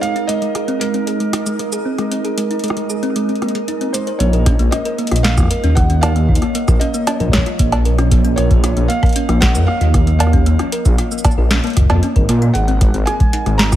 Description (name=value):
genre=IDM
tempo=115 BPM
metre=4/4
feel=straight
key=Bb minor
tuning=A4 = 444 Hz
part: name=felt-muted upright piano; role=melody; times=0.0-13.8 s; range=Bb4 to Bb5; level=-25 LUFS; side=right 2 dB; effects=analog delay
part: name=glassy FM pad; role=sustained chords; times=0.0-13.8 s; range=F3 to Eb5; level=-24 LUFS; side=right 3 dB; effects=ensemble chorus, built-in reverb
part: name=thumb-piano-like synth pluck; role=arpeggios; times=0.0-13.8 s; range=Ab3 to C5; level=-22 LUFS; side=left 2 dB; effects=chorus, dub echo
part: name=booming analog drum machine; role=drums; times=0.0-13.8 s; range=cowbell, hi-hat, rim click, shaker, snare drum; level=-21 LUFS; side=right 1 dB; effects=dub echo
part: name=bubbling stepped-filter texture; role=texture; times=0.0-4.2, 12.8-13.8 s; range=Bb4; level=-29 LUFS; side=right 6 dB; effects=chorus, built-in reverb, sidechain pumping
part: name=dark detuned saw bass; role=bass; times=4.2-13.8 s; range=Ab1 to Bb2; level=-15 LUFS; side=equal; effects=none
part: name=electronic kick drum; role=drums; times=4.5-13.8 s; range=none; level=-15 LUFS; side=equal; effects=none
room=light reverb, digital ambience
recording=echo-heavy mix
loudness=-13 LUFS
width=side -12 dB against mid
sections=0.0-4.2 A section; 4.2-13.8 B section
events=filter sweep on ambient pad 0.0-4.2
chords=0.0 Abadd9; 4.2 Bbm; 12.6 Abadd9